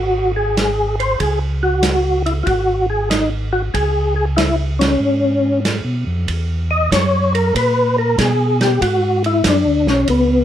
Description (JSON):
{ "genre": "soul jazz organ trio", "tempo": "95 BPM", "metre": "4/4", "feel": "swing 67% on 8ths", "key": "C# dorian", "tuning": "A4 = 440 Hz", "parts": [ { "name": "percussive tonewheel organ", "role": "melody", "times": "0.0-10.4 s", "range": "B3 to D#5", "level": "-16 LUFS", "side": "left 1 dB", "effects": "chorus vibrato, fast rotary speaker" }, { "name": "mellow tonewheel organ", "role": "bass", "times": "0.0-10.4 s", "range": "G#1 to B2", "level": "-19 LUFS", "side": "equal", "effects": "chorus vibrato, slow rotary speaker" }, { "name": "warm soul drum kit", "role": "drums", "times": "0.6-10.3 s", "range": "hi-hat, kick drum, ride cymbal, snare drum", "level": "-23 LUFS", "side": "right 2 dB", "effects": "none" } ], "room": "light reverb", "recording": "none", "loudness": "-14 LUFS", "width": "side -10 dB against mid", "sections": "0.0-6.3 A section; 6.3-10.4 B section", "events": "band accent 4.7-5.0; tonewheel organ solo 6.3-10.4", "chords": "0.0 G#7; 1.2 C#5; 6.3 Esus2; 8.8 G#m7b5", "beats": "0.57 | 1.20 1.84 2.47 3.11 | 3.74 4.38 5.01 5.64 | 6.28 6.91 7.54 8.18 | 8.81 9.44 10.07" }